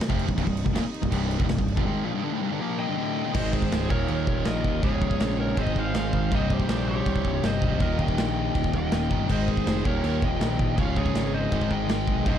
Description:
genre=heavy metal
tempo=162 BPM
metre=4/4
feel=straight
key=C phrygian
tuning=A4 = 440 Hz
part: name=dark studio string section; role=sustained chords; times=0.0-12.4 s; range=C3 to C5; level=-39 LUFS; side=right 1 dB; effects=none
part: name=big rock drum kit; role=drums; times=0.0-12.3 s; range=china cymbal, crash cymbal, kick drum, snare drum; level=-27 LUFS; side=equal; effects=none
part: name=distorted electric guitar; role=riff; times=0.1-12.4 s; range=C2 to Bb3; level=-31 LUFS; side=right 14 dB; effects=overdrive
part: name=sludgy distorted guitar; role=riff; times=0.1-12.4 s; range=C2 to Bb3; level=-29 LUFS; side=left 10 dB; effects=overdrive
part: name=fuzz picked electric bass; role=bass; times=0.1-12.4 s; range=C1 to Eb2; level=-29 LUFS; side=equal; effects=overdrive
part: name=high-gain lead guitar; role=melody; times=2.8-12.4 s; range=C5 to G5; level=-32 LUFS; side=left 1 dB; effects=distortion, digital delay
part: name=high-gain lead guitar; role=second line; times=2.8-12.4 s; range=G4 to Eb5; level=-36 LUFS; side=right 4 dB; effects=distortion
room=little or no reverb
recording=dark, warm production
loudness=-23 LUFS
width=side -9 dB against mid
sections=0.0-3.3 A section; 3.3-12.4 B section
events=break 1.9-3.3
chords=0.0 Cm; 3.3 Ab; 3.9 Eb; 4.8 Db; 5.6 Ab; 6.3 Cm; 7.8 Eb; 9.3 Ab; 9.8 Eb; 10.8 Db; 11.5 Ab

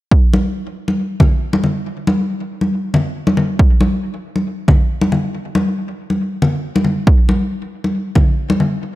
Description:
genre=dubstep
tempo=138 BPM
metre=4/4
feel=half-time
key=none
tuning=none
part: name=electronic kick drum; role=drums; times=0.1-8.2 s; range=none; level=-12 LUFS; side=right 1 dB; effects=overdrive
part: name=congas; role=percussion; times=0.3-8.7 s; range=none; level=-17 LUFS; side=left 1 dB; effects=dub echo
room=light reverb, small room ambience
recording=none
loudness=-14 LUFS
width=side -16 dB against mid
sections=0.1-9.0 A section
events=none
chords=none

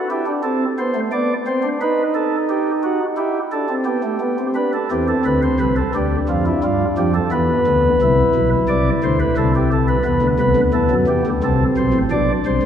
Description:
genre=classical, baroque-style 3-part fugue for pipe organ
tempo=88 BPM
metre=4/4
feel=straight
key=A minor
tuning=A4 = 440 Hz
part: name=pipe organ, flutes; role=solo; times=0.0-12.7 s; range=A1 to D5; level=-16 LUFS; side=equal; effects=none
room=wet church reverb, RT60 3.0 s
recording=none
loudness=-16 LUFS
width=side -9 dB against mid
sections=0.0-4.6 A section; 4.6-12.7 B section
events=none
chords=0.4 Am; 1.8 B/D#; 3.2 Em; 4.6 Am; 5.9 Dm; 7.3 E5; 8.7 Am/C; 10.1 Em; 11.4 Am

